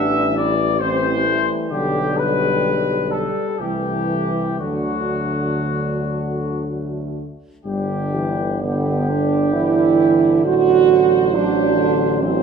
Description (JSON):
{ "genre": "classical, hymn-like piece for brass band", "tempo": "58-69 BPM", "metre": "3/4", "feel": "rubato", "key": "G major", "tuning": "A4 = 440 Hz", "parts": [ { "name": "dark trumpet section", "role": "melody", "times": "0.0-12.4 s", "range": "F#4 to E5", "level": "-23 LUFS", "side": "left 4 dB", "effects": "none" }, { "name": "mellow French horn section", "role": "second line", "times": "0.0-12.4 s", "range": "G3 to F#4", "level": "-20 LUFS", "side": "right 8 dB", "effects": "none" }, { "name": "warm euphonium", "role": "accompaniment", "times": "0.0-12.4 s", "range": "D3 to G3", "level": "-25 LUFS", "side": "left 2 dB", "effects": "none" }, { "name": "warm euphonium", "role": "accompaniment", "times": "0.0-12.4 s", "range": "D3 to D4", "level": "-26 LUFS", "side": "right 2 dB", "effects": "none" }, { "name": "warm tuba", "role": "bass", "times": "0.0-12.4 s", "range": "G1 to D2", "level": "-24 LUFS", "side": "equal", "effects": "none" } ], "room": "wet recital hall reverb, RT60 1.6 s", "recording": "minimal, uncompressed stereo recording, faint mains hum", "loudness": "-16 LUFS", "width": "side -6 dB against mid", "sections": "0.0-7.7 A section; 7.7-12.4 B section", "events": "none", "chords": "0.0 Am7; 1.7 G/B; 3.6 Am/C; 4.6 D; 7.7 G5; 10.4 F#dim/A", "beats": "0.81 | 1.71 2.64 3.60 | 4.60 5.63 6.64 | 7.66 8.62 9.52 | 10.44 11.34 12.21" }